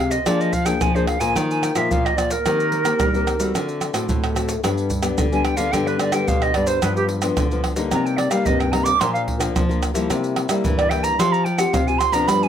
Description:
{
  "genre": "samba and choro",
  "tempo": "110 BPM",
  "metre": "4/4",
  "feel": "straight",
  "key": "C minor",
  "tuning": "A4 = 440 Hz",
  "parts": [
    { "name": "silver concert flute", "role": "second line", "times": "0.0-12.5 s", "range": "G4 to D6", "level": "-21 LUFS", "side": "right 3 dB", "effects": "none" },
    { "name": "nylon-string guitar", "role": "accompaniment", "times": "0.0-12.5 s", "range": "G2 to Ab4", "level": "-23 LUFS", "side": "left 5 dB", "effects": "none" },
    { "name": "nylon-string guitar", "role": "bass", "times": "0.0-12.5 s", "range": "G2 to G3", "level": "-25 LUFS", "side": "equal", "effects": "none" },
    { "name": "maracas, pandeiro, surdo and tamborim", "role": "percussion", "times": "0.1-12.5 s", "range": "none", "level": "-23 LUFS", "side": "right 2 dB", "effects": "none" }
  ],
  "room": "moderate studio reverb, RT60 0.5 s",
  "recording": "none",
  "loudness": "-18 LUFS",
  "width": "side -9 dB against mid",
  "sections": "0.0-12.5 A section",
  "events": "flute solo 0.0-12.5",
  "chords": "0.3 Bb7/F; 1.4 Ebsus2; 2.5 Cm7/Eb; 3.5 D7; 4.6 G; 6.8 G7; 7.9 Cm7; 9.0 Bb; 10.1 C7; 11.2 Fsus2"
}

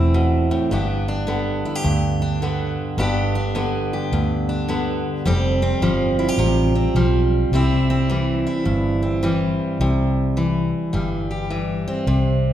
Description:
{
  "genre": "honky-tonk and classic country",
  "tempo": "106 BPM",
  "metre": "4/4",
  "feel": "swing 64% on 8ths",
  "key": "C major",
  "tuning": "A4 = 443 Hz",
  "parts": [
    { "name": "picked steel-string acoustic guitar", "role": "accompaniment", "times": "0.0-12.5 s", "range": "E2 to G4", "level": "-20 LUFS", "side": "equal", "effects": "none" },
    { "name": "vintage muted fingered electric bass", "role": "bass", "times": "0.0-12.5 s", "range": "E1 to D2", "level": "-21 LUFS", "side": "equal", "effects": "none" }
  ],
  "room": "wet recital hall reverb, RT60 1.4 s",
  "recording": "recorded in a church or concert hall",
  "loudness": "-18 LUFS",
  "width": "side -11 dB against mid",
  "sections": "0.0-9.8 A section; 9.8-12.5 B section",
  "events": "none",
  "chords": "0.0 Am; 0.7 G; 5.2 Fsus2; 7.5 C"
}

